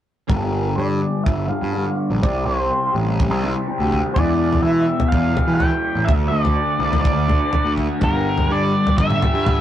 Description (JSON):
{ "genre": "psychedelic rock", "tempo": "124 BPM", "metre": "4/4", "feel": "straight", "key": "unclear", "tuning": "A4 = 442 Hz", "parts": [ { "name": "octave-fuzz lead guitar", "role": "melody", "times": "0.3-9.6 s", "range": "A4 to G5", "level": "-23 LUFS", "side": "right 1 dB", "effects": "distortion, low-pass filter" }, { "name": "fuzz guitar", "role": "riff", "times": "0.3-9.6 s", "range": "E2 to D4", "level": "-22 LUFS", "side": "left 1 dB", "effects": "distortion, phaser, low-pass filter" }, { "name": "fuzz picked electric bass", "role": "bass", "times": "0.3-9.6 s", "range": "G1 to E3", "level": "-22 LUFS", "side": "right 1 dB", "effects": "overdrive" }, { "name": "damped 70s drum kit", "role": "drums", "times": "0.3-9.6 s", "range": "kick drum, toms", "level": "-20 LUFS", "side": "equal", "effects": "none" } ], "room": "moderate studio reverb, RT60 0.6 s", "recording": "rough rehearsal-room recording", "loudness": "-16 LUFS", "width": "side -11 dB against mid", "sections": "0.3-9.6 A section", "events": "filter sweep 0.3-9.6", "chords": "0.3 G7(no3); 2.2 C5; 4.2 Em; 6.1 D5; 8.0 Gm" }